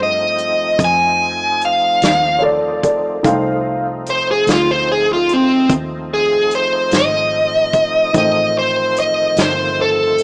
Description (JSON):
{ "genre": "slow blues", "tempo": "49 BPM (dotted quarters)", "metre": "12/8", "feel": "straight", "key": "F mixolydian", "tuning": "A4 = 440 Hz", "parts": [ { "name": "smooth overdriven lead guitar", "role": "melody", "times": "0.0-10.2 s", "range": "C4 to Ab5", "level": "-16 LUFS", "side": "equal", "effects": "none" }, { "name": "dark baby grand piano", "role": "accompaniment", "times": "0.0-10.2 s", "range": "A3 to G5", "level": "-26 LUFS", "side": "equal", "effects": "none" }, { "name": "overdriven tonewheel organ", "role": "sustained chords", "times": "0.0-10.2 s", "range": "Eb3 to Eb4", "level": "-29 LUFS", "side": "equal", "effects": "slow rotary speaker, chorus vibrato" }, { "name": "vintage muted fingered electric bass", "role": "bass", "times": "0.0-10.2 s", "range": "G1 to G2", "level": "-31 LUFS", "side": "equal", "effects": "none" }, { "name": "natural country drum kit", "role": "drums", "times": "0.4-10.2 s", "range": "hi-hat, kick drum, snare drum", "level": "-21 LUFS", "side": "equal", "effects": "none" }, { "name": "dark upright piano", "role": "second line", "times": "2.4-3.8 s", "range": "A4 to F5", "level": "-20 LUFS", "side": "equal", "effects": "tape echo" } ], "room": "moderate lush hall reverb, RT60 2.7 s", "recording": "rough home demo mix, small speaker sound", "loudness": "-16 LUFS", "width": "mono", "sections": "0.0-10.2 A section", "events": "none", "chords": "0.0 F7" }